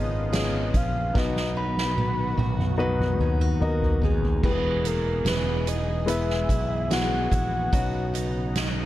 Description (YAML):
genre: pop ballad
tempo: 73 BPM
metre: 4/4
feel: straight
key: unclear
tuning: A4 = 438 Hz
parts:
  - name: soft octave-layered synth lead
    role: melody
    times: 0.0-8.1 s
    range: G#4 to B5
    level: -30 LUFS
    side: left 1 dB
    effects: chorus
  - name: dark grand piano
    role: accompaniment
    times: 0.0-8.9 s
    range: B2 to D#5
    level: -31 LUFS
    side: left 3 dB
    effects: none
  - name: lush unison pad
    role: sustained chords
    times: 0.0-8.9 s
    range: C#3 to G#4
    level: -36 LUFS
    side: right 1 dB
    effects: chorus, phaser
  - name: picked steel-string acoustic guitar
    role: arpeggios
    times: 0.0-8.9 s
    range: B2 to G#4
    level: -37 LUFS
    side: right 6 dB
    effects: none
  - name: fretless electric bass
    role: bass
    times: 0.0-8.9 s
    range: E1 to D#2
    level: -28 LUFS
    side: equal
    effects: none
  - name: soft-mallet drum kit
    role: drums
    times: 0.3-8.7 s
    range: crash cymbal, hi-hat, kick drum, snare drum, toms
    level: -27 LUFS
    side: equal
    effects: none
room: little or no reverb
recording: dark, warm production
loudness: -22 LUFS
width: side -14 dB against mid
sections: 0.0-4.4 A section; 4.4-8.9 A section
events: drum fill 1.1-4.4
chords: 0.0 C#7; 1.1 B; 4.4 E; 7.7 Badd9